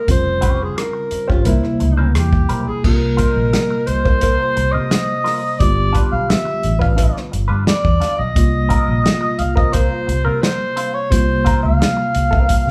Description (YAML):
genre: lush 1970s-style soul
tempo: 87 BPM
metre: 4/4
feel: straight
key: unclear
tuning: A4 = 440 Hz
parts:
  - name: warm alto saxophone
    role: melody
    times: 0.0-12.7 s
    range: E4 to F5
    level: -23 LUFS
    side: equal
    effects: none
  - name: tine electric piano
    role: accompaniment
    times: 0.0-12.7 s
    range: C3 to F4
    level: -25 LUFS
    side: equal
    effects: none
  - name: vintage muted fingered electric bass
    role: bass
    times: 0.1-12.7 s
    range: F1 to C3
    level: -22 LUFS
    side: equal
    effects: none
  - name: warm soul drum kit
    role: drums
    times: 0.1-12.7 s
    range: crash cymbal, hi-hat, kick drum, rim click, snare drum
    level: -20 LUFS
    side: equal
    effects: none
  - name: semi-hollow electric guitar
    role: riff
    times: 0.4-12.7 s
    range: C4 to Eb5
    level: -29 LUFS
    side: equal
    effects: wah
  - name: vibraphone with soft mallets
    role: texture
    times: 1.1-10.1 s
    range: F4 to Eb5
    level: -33 LUFS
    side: equal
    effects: none
room: moderate large studio reverb, RT60 1.1 s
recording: band playing live in one room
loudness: -17 LUFS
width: mono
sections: 0.0-2.8 A section; 2.8-12.7 B section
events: none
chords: 0.1 Bbm69/F; 1.5 C7; 2.8 C7sus4; 5.6 G7; 8.4 C7sus4